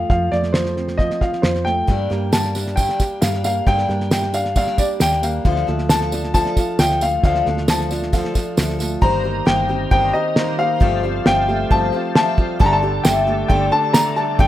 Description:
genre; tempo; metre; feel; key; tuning
indie folk with a building arrangement; 134 BPM; 4/4; straight; G minor; A4 = 440 Hz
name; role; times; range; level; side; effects
warm upright piano; melody; 0.0-14.5 s; C5 to Bb5; -20 LUFS; left 1 dB; none
warm upright piano; arpeggios; 0.0-14.5 s; D3 to G4; -25 LUFS; right 5 dB; none
hollow-body short-scale fingered electric bass; bass; 0.0-14.5 s; G1 to G2; -24 LUFS; equal; none
cloth-damped thuddy drum kit; drums; 0.1-14.5 s; kick drum, snare drum; -18 LUFS; equal; none
picked acoustic archtop guitar; accompaniment; 1.9-14.5 s; G2 to C5; -24 LUFS; left 6 dB; none
tambourine; percussion; 2.3-8.9, 13.0-14.0 s; none; -31 LUFS; right 6 dB; none
tonewheel organ; sustained chords; 9.0-14.5 s; G4 to Bb5; -31 LUFS; equal; slow rotary speaker, chorus vibrato
room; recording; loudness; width
light reverb, small room ambience; rough home demo mix; -16 LUFS; side -13 dB against mid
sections
0.0-9.0 A section; 9.0-14.5 B section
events
none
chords
0.0 F; 1.9 Gm; 5.5 Dm; 9.0 Cm7/G; 10.8 Fadd9/G; 12.6 Dsus4/G

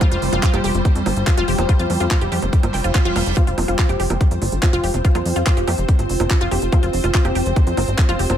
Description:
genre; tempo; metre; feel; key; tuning
psychedelic trance; 143 BPM; 4/4; straight; unclear; A4 = 440 Hz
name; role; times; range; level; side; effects
swarming drone; sustained chords; 0.0-8.4 s; G3 to C5; -26 LUFS; equal; built-in reverb, sidechain pumping
wide unison pluck; riff; 0.0-8.2 s; F4 to G5; -25 LUFS; moving between left 4 dB and right 4 dB; auto-pan, sidechain pumping, tape echo
electronic kick drum; drums; 0.0-8.1 s; none; -16 LUFS; equal; none
garage drum kit; drums; 0.0-8.4 s; bongos, handclaps, hi-hat; -25 LUFS; right 2 dB; none
warbly tape-like pad; texture; 0.0-8.4 s; F4 to G5; -27 LUFS; equal; chorus, built-in reverb, phaser, sidechain pumping
plucky analog bass; bass; 0.1-8.4 s; F1 to F2; -21 LUFS; equal; none
reverse cymbal; sound effects; 2.7-3.4 s; none; -30 LUFS; right 5 dB; none
room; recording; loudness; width
little or no reverb; none; -15 LUFS; side -10 dB against mid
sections
0.0-8.4 A section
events
reverse cymbal 2.7-3.4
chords
0.0 F5

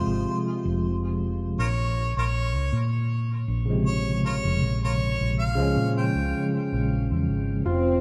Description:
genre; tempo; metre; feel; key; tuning
trip hop; 79 BPM; 4/4; swing 55% on 16ths; unclear; A4 = 438 Hz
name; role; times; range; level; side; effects
warm harmonica; melody; 0.0-6.5 s; F4 to G5; -34 LUFS; equal; tape echo
tine electric piano; accompaniment; 0.0-7.7 s; C3 to F4; -29 LUFS; equal; harmonic tremolo, tape echo
hollow-body short-scale fingered electric bass; bass; 0.0-8.0 s; F1 to Bb2; -28 LUFS; equal; none
dark studio violin section; sustained chords; 7.7-8.0 s; C4; -26 LUFS; equal; none
Celtic harp; arpeggios; 7.7-8.0 s; F4; -29 LUFS; equal; none
room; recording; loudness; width
moderate plate reverb, RT60 3.0 s; dreamy mix soaked in reverb, lossy compression artefacts; -25 LUFS; mono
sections
0.0-8.0 A section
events
none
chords
0.0 Fm; 1.6 Bbm9

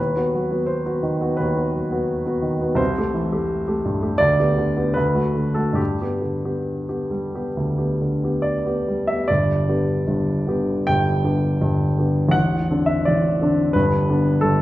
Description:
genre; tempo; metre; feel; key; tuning
classical, romantic character piece for solo piano; 66-91 BPM; 4/4; rubato; G major; A4 = 439 Hz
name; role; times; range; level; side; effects
warm baby grand piano; solo; 0.0-14.6 s; A0 to G5; -18 LUFS; equal; none
room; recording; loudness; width
wet recital hall reverb, RT60 1.5 s; recorded in a church or concert hall; -18 LUFS; side -16 dB against mid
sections
0.0-9.3 A section; 9.3-14.6 B section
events
none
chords
0.0 B/D#; 2.8 Am7/C; 4.2 G/D; 5.0 D; 5.8 G; 12.3 D5/A; 13.7 G

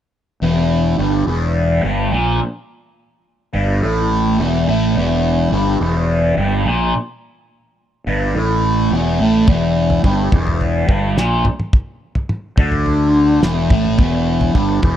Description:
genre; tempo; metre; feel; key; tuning
psychedelic rock; 106 BPM; 4/4; straight; E minor; A4 = 441 Hz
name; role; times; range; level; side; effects
fuzz guitar; riff; 0.4-15.0 s; E2 to D3; -16 LUFS; equal; distortion, phaser
fuzz fingered electric bass; bass; 0.4-15.0 s; E1 to D2; -19 LUFS; equal; overdrive
cloth-damped thuddy drum kit; drums; 9.5-15.0 s; kick drum, snare drum, toms; -16 LUFS; equal; none
room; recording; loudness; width
small room ambience; dry, close 1970s-style studio recording; -14 LUFS; side -10 dB against mid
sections
0.4-15.0 A section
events
none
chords
0.4 Em

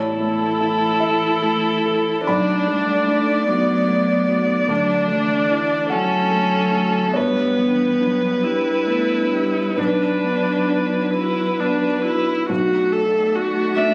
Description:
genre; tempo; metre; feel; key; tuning
neoclassical piano and strings; 43-50 BPM (dotted quarters); 6/8; rubato; B minor; A4 = 439 Hz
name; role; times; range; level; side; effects
muted violin; melody; 0.0-13.9 s; A4 to E5; -24 LUFS; equal; none
muted cello; second line; 0.0-13.9 s; E3 to A3; -29 LUFS; equal; none
felt-muted upright piano; accompaniment; 0.0-13.9 s; B1 to B5; -26 LUFS; equal; none
muted viola; accompaniment; 0.0-13.9 s; B3 to A4; -24 LUFS; equal; none
warbly tape-like pad; sustained chords; 0.0-13.9 s; A3 to G5; -32 LUFS; equal; none
room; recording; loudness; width
light reverb; recorded on a phone in the room, club reverb, compression; -19 LUFS; mono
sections
0.0-12.5 A section; 12.5-13.9 B section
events
none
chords
0.0 A; 2.3 Bm7; 4.7 Dadd9; 7.2 G; 9.8 Bm; 12.5 Bm7

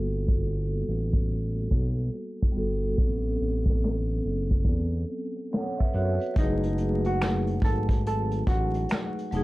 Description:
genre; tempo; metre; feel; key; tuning
lo-fi hip hop; 71 BPM; 4/4; swing 64% on 16ths; F# dorian; A4 = 440 Hz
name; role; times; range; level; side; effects
vibraphone with soft mallets; accompaniment; 0.0-9.4 s; F#3 to F#5; -31 LUFS; equal; none
smooth gliding synth bass; bass; 0.0-9.4 s; E1 to F#2; -28 LUFS; equal; transformer saturation
vintage brush drum kit; drums; 0.0-9.4 s; finger snaps, hi-hat, kick drum, snare drum; -26 LUFS; equal; none
hollow-body jazz guitar; melody; 6.4-9.1 s; D#4 to A4; -32 LUFS; equal; analog delay
room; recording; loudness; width
little or no reverb; dry, gritty hardware recording, vinyl crackle, low-pass filter; -24 LUFS; side -19 dB against mid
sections
0.0-6.4 A section; 6.4-9.4 B section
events
filter sweep 0.0-6.4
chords
0.0 Gmaj9; 3.0 A69; 6.4 F#m69

